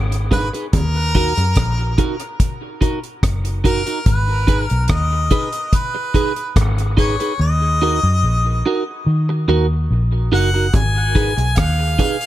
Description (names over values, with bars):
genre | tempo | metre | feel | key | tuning
dub reggae | 72 BPM | 4/4 | straight | G# dorian | A4 = 440 Hz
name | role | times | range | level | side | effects
vintage muted fingered electric bass | bass | 0.0-12.0 s | F#1 to D#3 | -18 LUFS | equal | none
deep reggae drum kit | drums | 0.1-12.3 s | hi-hat, kick drum, rim click | -18 LUFS | equal | none
warm harmonica | melody | 0.3-12.3 s | A#4 to G#5 | -23 LUFS | left 1 dB | dub echo
clean electric guitar | accompaniment | 0.3-12.2 s | D#4 to B4 | -23 LUFS | right 4 dB | wide subtle chorus, dub echo
bongos | percussion | 0.3-0.9, 10.7-12.2 s | none | -32 LUFS | right 4 dB | dub echo
room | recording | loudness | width
small room reverb | none | -15 LUFS | side -14 dB against mid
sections
0.0-12.3 A section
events
part muted 0.7-10.7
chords
0.0 G#m; 0.7 D#m; 4.1 G#m; 7.4 D#m; 10.7 G#m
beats
| 0.73 1.56 2.40 3.23 | 4.06 4.90 5.73 6.56 | 7.40 8.23 9.07 9.90 | 10.73 11.57